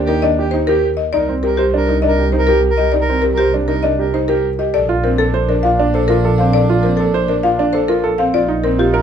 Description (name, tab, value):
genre	classical, minimalist pattern music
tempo	100 BPM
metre	3/4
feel	straight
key	Bb major from 4.7 s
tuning	A4 = 441 Hz
part	clear soprano saxophone	second line	0.0-9.0 s	D4 to Bb4	-24 LUFS	right 1 dB	none
part	warm baby grand piano	arpeggios	0.0-9.0 s	C4 to C5	-18 LUFS	right 5 dB	none
part	warm studio double bass section	bass	0.0-9.0 s	Bb1 to Eb2	-19 LUFS	right 1 dB	none
part	buzzing marimba with medium hard mallets	melody	0.1-9.0 s	G4 to F5	-18 LUFS	left 6 dB	none
room	light reverb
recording	dark, warm production, nothing above 10.5 kHz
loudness	-13 LUFS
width	side -8 dB against mid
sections	0.0-4.7 A section; 4.7-9.0 B section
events	none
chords	0.0 Eb; 1.1 Cm7; 4.7 Bbmaj7; 8.3 F9sus4/Bb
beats	0.53 | 1.13 1.73 2.33 | 2.93 3.53 4.13 | 4.73 5.33 5.93 | 6.53 7.13 7.73 | 8.33 8.93